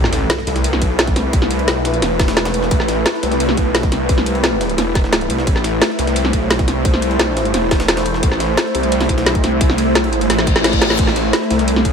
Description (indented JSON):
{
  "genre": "dark technical drum and bass",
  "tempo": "174 BPM",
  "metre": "4/4",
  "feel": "straight",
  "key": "A minor",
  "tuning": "A4 = 440 Hz",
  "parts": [
    { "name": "swarming drone", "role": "sustained chords", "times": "0.0-11.9 s", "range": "A3 to C5", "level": "-19 LUFS", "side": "equal", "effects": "built-in reverb, sidechain pumping" },
    { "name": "wide detuned saw bass", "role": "bass", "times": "0.0-11.9 s", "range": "E1 to C2", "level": "-19 LUFS", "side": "equal", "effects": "chorus, overdrive" },
    { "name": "drum and bass drum kit", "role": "drums", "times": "0.0-11.9 s", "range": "crash cymbal, hi-hat, snare drum", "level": "-19 LUFS", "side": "equal", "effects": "none" },
    { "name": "impact, zap and reverse cymbal", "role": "sound effects", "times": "0.0-2.5, 10.4-11.0 s", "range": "none", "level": "-24 LUFS", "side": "left 1 dB", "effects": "none" },
    { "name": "jungle sampler-style drum kit", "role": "drums", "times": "0.1-11.9 s", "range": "ride cymbal, snare drum", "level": "-28 LUFS", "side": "right 1 dB", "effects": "none" },
    { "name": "electronic kick drum", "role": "drums", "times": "0.8-11.9 s", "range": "none", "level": "-17 LUFS", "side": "equal", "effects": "none" }
  ],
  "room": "light reverb, digital ambience",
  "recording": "none",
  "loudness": "-13 LUFS",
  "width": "side -6 dB against mid",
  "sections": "0.0-11.9 A section",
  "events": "impact 0.0-1.3; drum fill 10.3-11.0; reverse cymbal 10.4-11.0",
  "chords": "0.0 Am"
}